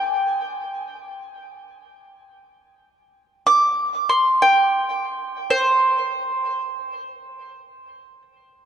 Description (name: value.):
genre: world meditative, free-time meditation music.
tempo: free time.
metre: none.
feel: none.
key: unclear.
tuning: A4 = 441 Hz.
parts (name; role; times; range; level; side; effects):
mandolin; solo; 0.0-8.2 s; C5 to D6; -18 LUFS; right 1 dB; diffuse ambient delay.
room: wet cathedral reverb, RT60 4.3 s.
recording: dark, warm production.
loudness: -18 LUFS.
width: side -9 dB against mid.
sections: 0.0-8.7 A section.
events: none.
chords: none.